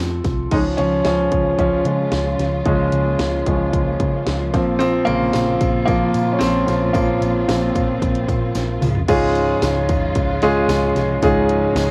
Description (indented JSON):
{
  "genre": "piano-driven pop",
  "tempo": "112 BPM",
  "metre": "4/4",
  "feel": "straight",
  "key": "unclear",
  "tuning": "A4 = 439 Hz",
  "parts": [
    { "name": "clear grand piano", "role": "accompaniment", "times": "0.0-11.9 s", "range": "Ab2 to A4", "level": "-20 LUFS", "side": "equal", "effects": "none" },
    { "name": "vintage muted picked electric bass", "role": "bass", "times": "0.0-11.9 s", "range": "Bb1 to Db3", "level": "-26 LUFS", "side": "equal", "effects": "none" },
    { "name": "house drum kit", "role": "drums", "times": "0.2-11.9 s", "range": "crash cymbal, hi-hat, kick drum, snare drum, toms", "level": "-26 LUFS", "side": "equal", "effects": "cassette tape" },
    { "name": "tambourine", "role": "percussion", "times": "0.2-0.4, 4.8-11.9 s", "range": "none", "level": "-44 LUFS", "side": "equal", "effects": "none" },
    { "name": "warm studio string section", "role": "sustained chords", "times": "0.5-11.9 s", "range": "Bb2 to F4", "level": "-30 LUFS", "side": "equal", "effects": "none" }
  ],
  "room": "light reverb",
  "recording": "home recording on cassette",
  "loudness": "-18 LUFS",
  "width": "mono",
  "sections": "0.5-9.1 A section; 9.1-11.9 B section",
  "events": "grand piano solo 0.5-9.1; drum fill 8.6-9.1",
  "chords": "0.0 F; 0.5 Db; 4.5 Bbsus2; 8.8 Db"
}